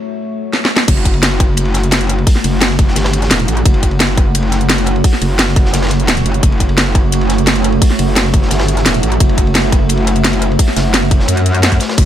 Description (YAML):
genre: dark technical drum and bass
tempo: 173 BPM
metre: 4/4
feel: straight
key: F# minor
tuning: A4 = 439 Hz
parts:
  - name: deep dark ambient pad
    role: sustained chords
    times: 0.0-12.1 s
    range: A3 to F#5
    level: -19 LUFS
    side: right 1 dB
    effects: chorus, built-in reverb, sidechain pumping
  - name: drum and bass drum kit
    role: drums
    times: 0.5-12.0 s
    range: crash cymbal, hi-hat, rim click, snare drum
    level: -15 LUFS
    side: equal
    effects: none
  - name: metallic wobble bass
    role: bass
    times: 0.9-12.1 s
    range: E1 to F#2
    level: -14 LUFS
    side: equal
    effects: distortion, chorus, tube saturation
  - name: crunchy breakbeat drum kit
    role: drums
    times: 0.9-12.1 s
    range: hi-hat, ride cymbal, snare drum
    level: -24 LUFS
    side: equal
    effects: high-pass filter on cymbals, high-pass filter on hats, high-pass filter on snare, high-pass filter on room
  - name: electronic kick drum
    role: drums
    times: 0.9-12.0 s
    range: none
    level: -12 LUFS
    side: equal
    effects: none
room: small room ambience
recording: none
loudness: -10 LUFS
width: side -11 dB against mid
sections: 0.9-12.1 A section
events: break 0.0-0.9; drum fill 0.5-0.9; drop 0.9-12.1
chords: 0.0 F#m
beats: 0.19 0.53 | 0.88 1.23 1.57 1.92 | 2.27 2.62 2.96 3.31 | 3.65 4.00 4.35 4.70 | 5.04 5.39 5.74 6.08 | 6.43 6.78 7.12 7.47 | 7.82 8.16 8.51 8.86 | 9.21 9.55 9.90 10.24 | 10.59 10.94 11.29 11.63 | 11.98